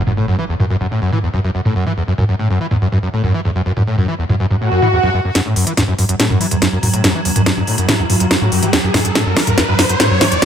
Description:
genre	driving peak-time techno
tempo	142 BPM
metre	4/4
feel	straight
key	unclear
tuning	A4 = 441 Hz
part	screaming distorted acid line	riff	0.0-10.4 s	E2 to E3	-17 LUFS	equal	distortion, ensemble chorus, ping-pong delay
part	impact, swell and riser	sound effects	0.0-0.3, 4.6-10.4 s	none	-20 LUFS	equal	none
part	techno drum kit	drums	0.1-10.4 s	hi-hat, snare drum, toms	-16 LUFS	equal	overdrive, low-pass filter on hats, studio reverb, low-pass filter on cymbals, low-pass filter on toms, low-pass filter on snare
part	swarming drone	drone	5.8-10.4 s	F#3	-21 LUFS	right 2 dB	built-in reverb
room	light reverb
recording	none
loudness	-13 LUFS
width	side -8 dB against mid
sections	0.0-5.4 A section; 5.4-10.4 B section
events	impact 0.0; swell 4.6-5.4; build-up 5.4-10.4; drum fill 5.4-10.4; riser 5.4-10.4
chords	0.0 Esus24; 5.4 Esus2

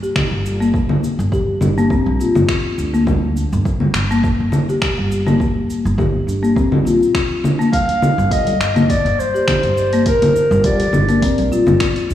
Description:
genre	organic downtempo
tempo	103 BPM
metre	4/4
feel	swing 54% on 16ths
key	G minor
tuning	A4 = 440 Hz
part	folk marimba with soft mallets	arpeggios	0.0-12.1 s	G3 to G4	-18 LUFS	left 2 dB	digital delay
part	deep house drum kit	drums	0.0-12.1 s	cabasa, congas, finger snaps, hi-hat	-20 LUFS	equal	none
part	electronic kick drum	drums	0.2-11.9 s	none	-21 LUFS	equal	none
part	upright bass	bass	0.3-12.1 s	G1 to D2	-20 LUFS	equal	none
part	mellow clarinet	melody	7.7-11.5 s	Bb4 to F5	-17 LUFS	equal	digital delay
room	moderate lush hall reverb, RT60 2.1 s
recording	played on a big sound system in a bare room, stone room reverb, small room reverb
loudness	-14 LUFS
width	side -11 dB against mid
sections	0.0-12.1 A section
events	none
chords	0.0 Gm7

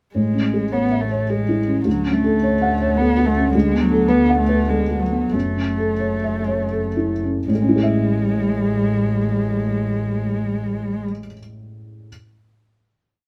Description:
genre	neoclassical piano and strings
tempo	78-109 BPM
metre	3/4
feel	rubato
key	A major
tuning	A4 = 436 Hz
part	dark cello	second line	0.1-11.0 s	F#3 to B3	-24 LUFS	equal	none
part	felt-muted upright piano	accompaniment	0.1-12.1 s	D2 to F#5	-23 LUFS	equal	none
part	warm double bass	bass	0.2-11.0 s	F#1 to D2	-27 LUFS	equal	none
room	moderate studio reverb, RT60 0.6 s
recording	band playing live in one room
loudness	-19 LUFS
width	mono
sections	0.2-7.5 theme; 7.5-12.1 final chord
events	slowing down 2.7-7.5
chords	0.2 Amaj7; 1.9 Dmaj7; 3.5 Bm7/D; 5.3 F#m7; 7.5 Amaj7

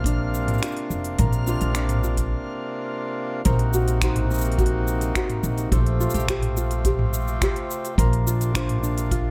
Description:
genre	folktronica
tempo	106 BPM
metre	4/4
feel	straight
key	Bb major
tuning	A4 = 440 Hz
part	hand-pumped harmonium	sustained chords	0.0-9.3 s	C3 to G4	-32 LUFS	equal	none
part	ukulele	arpeggios	0.0-9.3 s	D4 to C5	-31 LUFS	equal	tape echo
part	upright bass	bass	0.0-9.3 s	F1 to Bb1	-26 LUFS	equal	none
part	kick drum	drums	0.0-9.2 s	none	-28 LUFS	equal	none
part	backwards swelling texture	texture	0.0-2.3 s	F6	-44 LUFS	equal	built-in reverb
part	organic electronic drum kit	drums	0.1-9.2 s	finger snaps, hi-hat, shaker, toms	-30 LUFS	equal	none
room	little or no reverb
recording	none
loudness	-23 LUFS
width	mono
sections	0.0-3.5 A section; 3.5-9.3 B section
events	break 2.3-3.5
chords	0.0 Bbadd9; 3.5 Ebm6/Bb; 5.7 Fadd9/Bb; 8.0 Bbadd9

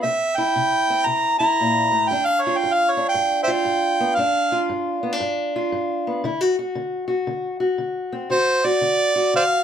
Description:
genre	acoustic country blues, solo or duo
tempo	116 BPM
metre	4/4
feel	swing 64% on 8ths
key	unclear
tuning	A4 = 438 Hz
part	warm harmonica	melody	0.0-4.7, 8.3-9.6 s	C5 to Bb5	-18 LUFS	right 2 dB	plate reverb
part	fingerpicked steel-string acoustic guitar	accompaniment	0.0-9.6 s	G2 to F#4	-23 LUFS	left 1 dB	none
room	moderate studio ambience, RT60 0.5 s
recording	none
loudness	-18 LUFS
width	side -8 dB against mid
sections	0.0-9.6 A section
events	none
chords	0.0 C7; 2.1 G7(no3); 6.2 D

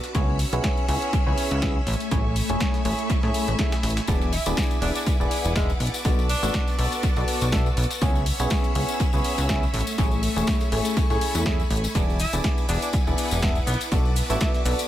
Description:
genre	piano house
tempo	122 BPM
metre	4/4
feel	swing 55% on 16ths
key	unclear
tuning	A4 = 440 Hz
part	string machine, violins	sustained chords	0.0-14.9 s	A3 to E6	-33 LUFS	left 1 dB	ensemble chorus, sidechain pumping
part	breakbeat sampler-style drum kit	drums	0.0-14.9 s	hi-hat, snare drum	-39 LUFS	right 1 dB	none
part	house drum kit	drums	0.0-14.9 s	hi-hat, shaker, snare drum	-32 LUFS	left 1 dB	tape echo
part	clear studio string section	texture	0.0-14.9 s	A3 to B5	-34 LUFS	right 1 dB	sidechain pumping
part	percussive organ stab	riff	0.1-14.9 s	A3 to E5	-29 LUFS	equal	chorus, sidechain pumping, tape echo
part	plucky analog bass	bass	0.1-14.7 s	D1 to A2	-26 LUFS	equal	sidechain pumping
part	electronic kick drum	drums	0.1-14.5 s	none	-25 LUFS	equal	none
part	tambourine	percussion	4.1-14.9 s	none	-36 LUFS	left 6 dB	tape echo
part	warm tenor saxophone	melody	4.3-6.8, 12.2-14.6 s	G#3 to E4	-33 LUFS	equal	tape echo
room	light reverb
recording	echo-heavy mix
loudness	-21 LUFS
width	side -12 dB against mid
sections	0.0-14.9 A section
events	none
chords	0.1 C#m7; 1.9 Amaj7; 4.1 E7; 5.8 Bm7; 8.0 C#m7; 9.7 Amaj7; 12.0 E7; 13.7 Bm7

